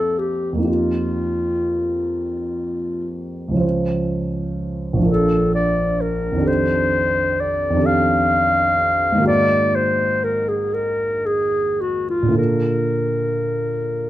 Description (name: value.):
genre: classical, impressionist duo for clarinet and grand piano.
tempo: 35-44 BPM (dotted quarters).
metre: 6/8.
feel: rubato.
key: unclear.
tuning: A4 = 435 Hz.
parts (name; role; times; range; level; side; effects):
warm clarinet; melody; 0.0-14.1 s; F4 to F5; -19 LUFS; left 1 dB; none.
dark grand piano; accompaniment; 0.0-14.1 s; Bb1 to C5; -21 LUFS; right 1 dB; none.
room: moderate large studio reverb, RT60 1.2 s.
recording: dark, warm production.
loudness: -17 LUFS.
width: side -14 dB against mid.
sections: 0.0-14.1 A section.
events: none.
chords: 0.0 F9sus4; 3.6 Dbmaj7; 5.1 Bb; 6.5 F13; 9.3 Absus2; 12.4 Bbmaj7.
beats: | 0.68 2.15 | 3.63 5.09 | 6.48 7.86 | 9.28 10.74 | 12.38 13.96.